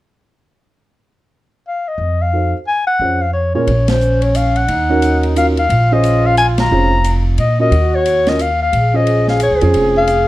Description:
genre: jazz, small-group swing and bop.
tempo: 178 BPM.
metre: 3/4.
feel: swing 62% on 8ths.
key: Bb minor from 3.7 s.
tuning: A4 = 440 Hz.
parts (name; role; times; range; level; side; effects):
mellow clarinet; melody; 1.7-10.3 s; C5 to Bb5; -16 LUFS; left 2 dB; none.
upright bass; bass; 2.0-10.3 s; F1 to Bb2; -16 LUFS; equal; none.
dark concert grand piano; accompaniment; 2.3-10.1 s; Bb2 to C5; -19 LUFS; right 2 dB; none.
mellow trombone; second line; 3.7-10.3 s; Db4 to Ab4; -20 LUFS; right 2 dB; none.
open jazz drum kit; drums; 3.7-10.2 s; hi-hat, ride cymbal, snare drum; -27 LUFS; left 1 dB; none.
room: light reverb.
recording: dark, warm production.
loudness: -12 LUFS.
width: side -16 dB against mid.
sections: 1.6-3.7 A section; 3.7-10.3 B section.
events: band accent 3.8, 6.5.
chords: 1.6 Ebsus2; 2.3 F7b9; 2.7 Fm; 3.3 Bbm7/F; 3.7 Bbm; 4.7 Ebm7; 5.7 Bbm7; 7.7 Ebm7; 8.7 Bbm7.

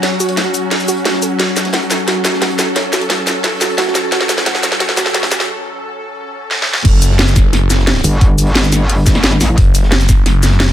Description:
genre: dark technical drum and bass.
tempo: 176 BPM.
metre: 4/4.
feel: straight.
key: F# phrygian.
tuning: A4 = 441 Hz.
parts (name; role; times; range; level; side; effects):
swarming drone; sustained chords; 0.0-6.8 s; F#3 to A4; -20 LUFS; left 1 dB; built-in reverb, sidechain pumping.
soft round pluck; arpeggios; 0.0-5.4 s; F#4 to F#5; -21 LUFS; right 4 dB; chorus, sidechain pumping, digital delay.
crunchy breakbeat drum kit; drums; 0.0-10.7 s; hi-hat, snare drum; -27 LUFS; equal; none.
drum and bass drum kit; drums; 0.0-10.7 s; crash cymbal, hi-hat, shaker, snare drum; -15 LUFS; equal; high-pass filter on snare, high-pass filter on hats, high-pass filter on perc, high-pass filter on cymbals, high-pass filter on room.
phased detuned saw bass; bass; 6.8-10.7 s; F#1; -12 LUFS; equal; phaser, tube saturation, sidechain pumping.
electronic kick drum; drums; 6.8-10.2 s; none; -11 LUFS; equal; none.
metallic wobble bass; bass; 8.0-9.6 s; G1 to A1; -12 LUFS; equal; distortion, chorus.
room: light reverb, digital ambience.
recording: high-pass filter.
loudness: -11 LUFS.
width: side -11 dB against mid.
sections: 0.0-6.8 A section; 6.8-10.7 B section.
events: build-up 0.0-6.8; drum fill 0.0-5.5, 6.5-6.8; filter sweep on synth pluck 0.0-6.8; break 5.5-6.8; drop 6.8-10.7.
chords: 0.0 F#m; 6.8 N.C..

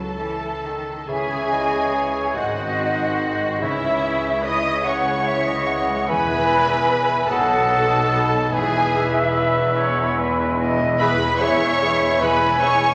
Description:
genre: classical.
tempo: 49 BPM (dotted quarters).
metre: 6/8.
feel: rubato.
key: C# minor.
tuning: A4 = 440 Hz.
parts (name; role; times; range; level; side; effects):
rich symphonic violin section; melody; 0.0-12.9 s; E5 to D#6; -28 LUFS; equal; none.
clear chamber violin section; second line; 0.0-12.9 s; E4 to D#5; -31 LUFS; equal; none.
clear symphonic viola section; accompaniment; 0.0-12.9 s; E4 to D#5; -30 LUFS; equal; none.
concert harp; arpeggios; 0.0-12.9 s; E2 to G#5; -32 LUFS; equal; none.
warm trumpet; stabs; 0.0-12.9 s; E4 to D#5; -29 LUFS; equal; none.
rich chamber cello section; bass; 0.0-12.9 s; E2 to F#3; -31 LUFS; equal; none.
warm chamber double bass section; bass; 0.0-12.9 s; E1 to C#2; -34 LUFS; equal; none.
clear oboe; second line; 1.1-12.8 s; B#4 to E5; -32 LUFS; equal; none.
mellow clarinet; second line; 1.1-12.8 s; G#4 to B4; -34 LUFS; equal; none.
silver concert flute; second line; 1.1-12.9 s; B4 to G#5; -26 LUFS; equal; none.
clear bassoon; accompaniment; 1.1-12.8 s; D#3 to F#3; -33 LUFS; equal; none.
mellow French horn section; sustained chords; 1.1-12.9 s; F#3 to E4; -33 LUFS; equal; none.
room: wet recital hall reverb, RT60 1.5 s.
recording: none.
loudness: -20 LUFS.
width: mono.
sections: 0.0-1.1 A section; 1.1-12.9 B section.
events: none.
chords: 0.0 C#m; 2.4 G#7; 3.6 C#m; 6.1 E; 7.3 B7; 8.5 E.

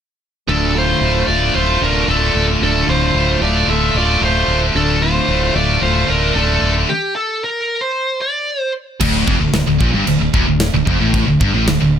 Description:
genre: heavy metal.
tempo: 113 BPM.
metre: 4/4.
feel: straight.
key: D minor.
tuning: A4 = 440 Hz.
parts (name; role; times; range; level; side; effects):
high-gain lead guitar; melody; 0.5-8.7 s; G4 to E5; -18 LUFS; right 1 dB; distortion.
high-gain lead guitar; second line; 0.5-6.7 s; D4 to A4; -24 LUFS; right 2 dB; distortion.
chamber organ, soft reed; sustained chords; 0.5-6.8 s; D3 to F4; -30 LUFS; equal; none.
heavy high-gain guitar; riff; 0.5-12.0 s; D2 to F4; -20 LUFS; right 13 dB; distortion.
scooped high-gain guitar; riff; 0.5-12.0 s; D2 to F4; -19 LUFS; left 11 dB; distortion.
modern bright fingered electric bass; bass; 0.5-12.0 s; D1 to Bb1; -19 LUFS; equal; none.
high-gain distorted guitar; riff; 9.0-12.0 s; D2 to Bb2; -20 LUFS; right 1 dB; distortion.
modern studio drum kit; drums; 9.0-11.8 s; china cymbal, crash cymbal, kick drum, snare drum; -19 LUFS; equal; none.
room: little or no reverb.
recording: none.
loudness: -13 LUFS.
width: side -8 dB against mid.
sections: 0.5-9.0 A section; 9.0-12.0 B section.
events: stop 6.9-9.0.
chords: 0.5 Dm.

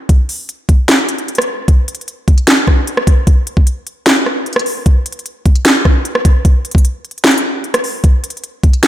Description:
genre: hip hop.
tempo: 151 BPM.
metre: 4/4.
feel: half-time.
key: none.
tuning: none.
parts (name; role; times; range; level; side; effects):
trap drum kit; drums; 0.1-8.9 s; hi-hat, kick drum, rim click, snare drum; -10 LUFS; equal; overdrive.
room: moderate lush hall reverb, RT60 1.8 s, digital ambience.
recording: dreamy mix soaked in reverb.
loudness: -11 LUFS.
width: side -13 dB against mid.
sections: 0.0-1.7 A section; 1.7-8.9 B section.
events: kick muted 0.9-1.7.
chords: none.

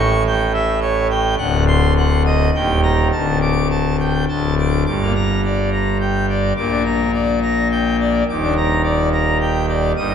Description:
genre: classical, organ toccata.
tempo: 106 BPM.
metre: 3/4.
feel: straight.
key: G minor.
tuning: A4 = 439 Hz.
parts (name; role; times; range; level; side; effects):
pipe organ, full organ; solo; 0.0-10.1 s; D1 to Eb6; -15 LUFS; left 1 dB; none.
room: wet church reverb, RT60 3.3 s.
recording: none.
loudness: -15 LUFS.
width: side -8 dB against mid.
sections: 0.0-4.9 A section; 4.9-10.1 B section.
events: none.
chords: 0.0 A7; 1.4 D7b9; 2.5 Eb; 3.1 Dsus4; 4.3 D5; 4.9 Gm; 6.6 Gm/Bb; 8.3 Ebmaj7.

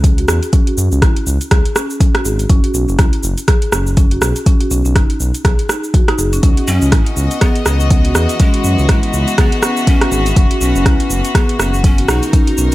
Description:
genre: afro house.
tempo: 122 BPM.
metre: 4/4.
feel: swing 58% on 16ths.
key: C# minor.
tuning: A4 = 440 Hz.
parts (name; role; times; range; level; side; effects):
marimba with soft mallets; arpeggios; 0.0-12.7 s; C#4 to G#4; -21 LUFS; right 1 dB; sidechain pumping, low-pass filter, digital delay.
smooth synth bass; bass; 0.0-12.7 s; F#1 to F#2; -16 LUFS; equal; sidechain pumping.
afro-pop drum kit; drums; 0.0-12.7 s; hi-hat, rim click, shaker; -19 LUFS; right 1 dB; overdrive.
electronic kick drum; drums; 0.0-12.4 s; none; -12 LUFS; equal; overdrive.
rich studio string section; sustained chords; 6.4-12.7 s; D#3 to D#5; -21 LUFS; left 2 dB; sidechain pumping.
breathy large pan pipes; melody; 6.7-12.7 s; G#3 to D#4; -21 LUFS; left 1 dB; digital delay.
room: little or no reverb.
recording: none.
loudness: -11 LUFS.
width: side -17 dB against mid.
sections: 0.0-12.7 A section.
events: filter sweep on marimba 0.0-12.7.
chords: 0.0 C#sus4; 2.5 F#5; 4.5 B; 6.4 C#m11; 10.4 F#7sus4.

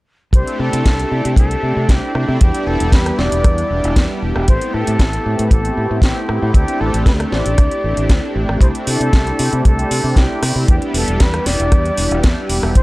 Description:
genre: nu-disco, nu disco.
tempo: 116 BPM.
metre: 4/4.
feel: straight.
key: C major.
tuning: A4 = 436 Hz.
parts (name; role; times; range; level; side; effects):
reedy silver concert flute; melody; 0.3-12.8 s; G4 to D5; -23 LUFS; left 1 dB; none.
warm analog pad; accompaniment; 0.3-12.8 s; G3 to G4; -21 LUFS; equal; chorus.
fingered electric bass; bass; 0.3-12.8 s; E1 to C3; -19 LUFS; equal; none.
house drum kit; drums; 0.3-12.8 s; hi-hat, rim click, snare drum; -23 LUFS; equal; none.
kick drum; drums; 0.3-12.8 s; none; -12 LUFS; equal; none.
room: studio ambience.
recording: dry, gritty hardware recording.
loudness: -13 LUFS.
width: side -20 dB against mid.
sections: 0.3-12.8 A section.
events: none.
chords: 0.3 C69; 2.4 Em7; 4.5 Am7; 6.5 D7sus4; 8.6 C69; 10.7 Em7.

